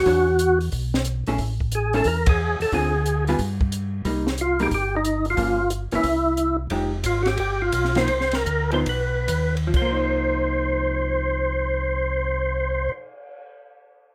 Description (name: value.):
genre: soul jazz organ trio.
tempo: 126-181 BPM.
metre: 4/4.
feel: swing 65% on 8ths.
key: C minor from 6.7 s.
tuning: A4 = 441 Hz.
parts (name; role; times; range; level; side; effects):
percussive tonewheel organ; melody; 0.0-12.9 s; Eb4 to C5; -24 LUFS; equal; slow rotary speaker, overdrive, chorus vibrato.
mellow tonewheel organ; bass; 0.0-12.9 s; F1 to G2; -28 LUFS; equal; slow rotary speaker.
vintage hollow-body jazz guitar; accompaniment; 0.1-13.1 s; D3 to C#5; -29 LUFS; equal; none.
compact cocktail drum kit; drums; 0.1-13.4 s; crash cymbal, cymbal swell, hi-hat, kick drum, ride cymbal, snare drum; -30 LUFS; equal; none.
room: moderate studio reverb, RT60 0.6 s.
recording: none.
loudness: -23 LUFS.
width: mono.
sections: 0.0-6.7 A section; 6.7-9.7 B section; 9.7-13.5 C section.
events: band accent 2.2; slowing down 6.7-9.7.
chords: 0.1 E13; 1.4 Amaj7(no3); 2.7 Dm7b5; 3.4 N.C.; 4.1 Cm7; 5.4 Gm7b5; 6.0 C; 6.7 Fm9; 7.4 G7b13; 8.1 Cm11; 8.9 B; 9.7 Cm7.